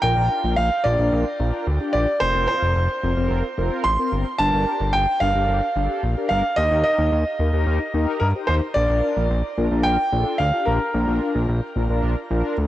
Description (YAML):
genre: synth-pop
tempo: 110 BPM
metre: 4/4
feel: straight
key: Bb major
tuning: A4 = 438 Hz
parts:
  - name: clear grand piano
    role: melody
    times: 0.0-12.5 s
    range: Bb4 to C6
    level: -22 LUFS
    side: right 1 dB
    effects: shimmer reverb
  - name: mellow synth brass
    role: accompaniment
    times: 0.0-12.6 s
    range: C4 to C5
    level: -27 LUFS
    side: left 2 dB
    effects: chorus, shimmer reverb
  - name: fat analog bass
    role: bass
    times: 0.0-12.7 s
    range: F1 to G2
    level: -21 LUFS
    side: equal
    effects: none
room: light reverb, small room reverb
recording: cassette tape, nothing above 10.3 kHz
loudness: -18 LUFS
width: side -14 dB against mid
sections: 0.0-12.7 A section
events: none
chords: 0.0 Bb; 2.2 Fsus4; 4.4 Gmadd9; 6.6 Eb; 8.8 Bb